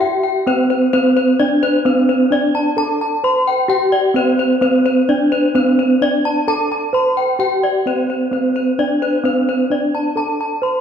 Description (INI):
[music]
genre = gamelan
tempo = 130 BPM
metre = 4/4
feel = straight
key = unclear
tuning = A4 = 440 Hz
[part]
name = gamelan-type bronze metallophone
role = melody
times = 0.0-10.8 s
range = C4-45c to C5-45c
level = -16 LUFS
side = right 1 dB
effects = none
[part]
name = gamelan-type bronze metallophone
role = arpeggios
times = 0.0-10.7 s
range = C5-45c to C6-45c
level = -18 LUFS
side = left 3 dB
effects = none
[sound]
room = wet recital hall reverb, RT60 1.8 s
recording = heard from further back in the room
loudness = -14 LUFS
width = side -8 dB against mid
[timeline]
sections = 0.5-10.8 A section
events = none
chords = none